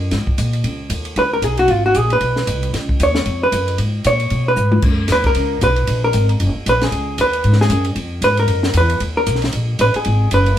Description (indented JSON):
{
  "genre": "jazz, small-group swing and bop",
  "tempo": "230 BPM",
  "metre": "4/4",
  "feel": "swing 59% on 8ths",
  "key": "Db mixolydian",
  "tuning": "A4 = 441 Hz",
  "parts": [
    { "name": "upright bass", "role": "bass", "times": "0.0-10.6 s", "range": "Gb1 to Cb3", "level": "-18 LUFS", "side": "equal", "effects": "none" },
    { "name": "compact cocktail drum kit", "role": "drums", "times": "0.1-10.5 s", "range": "crash cymbal, hi-hat, kick drum, ride cymbal, snare drum, toms", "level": "-23 LUFS", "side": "equal", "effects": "none" },
    { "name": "vintage hollow-body jazz guitar", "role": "melody", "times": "1.2-10.6 s", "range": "F4 to Db5", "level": "-17 LUFS", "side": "equal", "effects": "none" }
  ],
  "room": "moderate studio reverb, RT60 0.5 s",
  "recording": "band playing live in one room",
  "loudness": "-14 LUFS",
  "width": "side -11 dB against mid",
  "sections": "0.6-10.6 A section",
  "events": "hollow-body jazz guitar solo 0.6-10.6; drum fill 4.6",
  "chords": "0.1 Absus2; 0.6 Db7; 4.8 Gb; 6.9 Db5; 8.0 Fm; 8.5 Esus2; 9.0 Eb5; 10.0 Ab7(no3)"
}